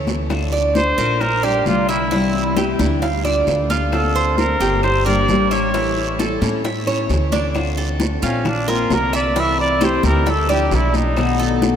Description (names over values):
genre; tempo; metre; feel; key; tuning
latin, Cuban son and guajira; 132 BPM; 4/4; straight; D minor; A4 = 436 Hz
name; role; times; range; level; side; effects
picked steel-string acoustic guitar; accompaniment; 0.0-11.8 s; B2 to G4; -23 LUFS; left 4 dB; none
Cuban tres; arpeggios; 0.0-11.8 s; D4 to F5; -22 LUFS; right 2 dB; none
upright bass; bass; 0.0-11.8 s; G1 to A2; -22 LUFS; right 1 dB; none
bongos; percussion; 0.1-11.8 s; none; -27 LUFS; left 4 dB; none
congas; percussion; 0.1-11.8 s; none; -28 LUFS; left 1 dB; none
guiro; percussion; 0.1-11.8 s; none; -33 LUFS; right 8 dB; none
claves; percussion; 0.3-11.4 s; none; -37 LUFS; left 3 dB; none
breathy trumpet; melody; 0.8-11.6 s; C#4 to E5; -22 LUFS; right 1 dB; none
room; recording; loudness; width
wet cathedral reverb, RT60 4.9 s; in a vast, echoing space; -15 LUFS; side -8 dB against mid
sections
0.0-7.5 A section; 7.5-11.8 B section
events
drum fill 0.0-0.3, 7.3; trumpet solo 7.5-11.8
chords
0.3 Dm; 1.2 Bb6; 2.1 Cadd9; 3.0 Dm; 3.9 Bbadd9/D; 4.8 Gm; 5.7 A; 7.5 Dm7; 8.5 Bbadd9; 9.4 C6; 10.3 Dmadd9; 11.2 B7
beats
| 0.30 0.76 1.21 1.66 | 2.12 2.57 3.02 3.47 | 3.93 4.38 4.83 5.29 | 5.74 6.19 6.64 7.10 | 7.55 8.00 8.45 8.91 | 9.36 9.81 10.26 10.72 | 11.17 11.62